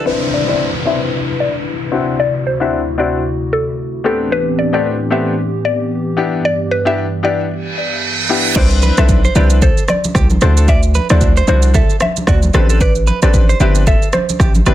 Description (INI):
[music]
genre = afrobeats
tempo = 113 BPM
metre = 4/4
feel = swing 58% on 16ths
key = unclear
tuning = A4 = 440 Hz
[part]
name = clear grand piano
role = accompaniment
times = 0.0-14.7 s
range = A3 to C5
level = -19 LUFS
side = left 5 dB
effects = low-pass filter
[part]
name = hollow soft pad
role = sustained chords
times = 0.0-8.5 s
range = D2 to B4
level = -20 LUFS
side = equal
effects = chorus, sidechain pumping, low-pass filter
[part]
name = direct-recorded clean electric guitar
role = riff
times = 0.0, 8.6-14.7 s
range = F#4 to D5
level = -23 LUFS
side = right 5 dB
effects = digital delay
[part]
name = mallet-like synth pluck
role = melody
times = 0.1-14.3 s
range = A4 to E5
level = -20 LUFS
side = left 1 dB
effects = chorus, low-pass filter, digital delay
[part]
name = downlifter and reverse cymbal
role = sound effects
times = 0.1-4.3, 7.6-8.6 s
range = none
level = -21 LUFS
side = right 2 dB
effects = none
[part]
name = hard-hitting 808-style bass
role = bass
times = 8.6-14.7 s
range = G1 to D2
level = -12 LUFS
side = equal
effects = none
[part]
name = afro-pop drum kit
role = drums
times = 8.6-14.7 s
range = crash cymbal, kick drum, rim click, shaker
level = -15 LUFS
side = equal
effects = soft clipping on snare
[part]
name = congas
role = percussion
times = 8.8-14.7 s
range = none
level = -22 LUFS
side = right 2 dB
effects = none
[sound]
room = light reverb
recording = dense, heavily limited modern master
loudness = -12 LUFS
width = side -13 dB against mid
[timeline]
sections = 0.1-8.6 A section; 8.6-14.7 B section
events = filter sweep 0.1-8.6; reverse cymbal 7.6-8.6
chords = 0.1 Cmaj9; 1.9 D9; 4.0 Am11; 6.2 G6; 8.6 Cmaj9; 10.4 D9; 12.5 Am11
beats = | 0.06 0.59 1.12 1.66 | 2.19 2.72 3.25 3.78 | 4.31 4.84 5.37 5.90 | 6.43 6.97 7.50 8.03 | 8.56 9.09 9.62 10.15 | 10.68 11.21 11.74 12.28 | 12.81 13.34 13.87 14.40